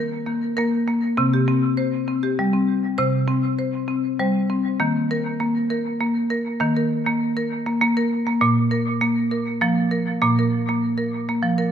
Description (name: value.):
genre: world meditative, meditative tuned percussion.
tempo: 100 BPM.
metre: 3/4.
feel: swing 55% on 16ths.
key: unclear.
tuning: A4 = 440 Hz.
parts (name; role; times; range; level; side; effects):
marimba with medium hard mallets; solo; 0.0-11.7 s; Bb2 to C5; -19 LUFS; equal; diffuse ambient delay.
room: wet echo chamber reverb, RT60 1.6 s, small room ambience.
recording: none.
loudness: -19 LUFS.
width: side -8 dB against mid.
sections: 0.0-4.8 A section; 4.8-11.7 B section.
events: none.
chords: 0.0 N.C.; 1.2 C5; 4.8 Eb5; 8.4 Bb5.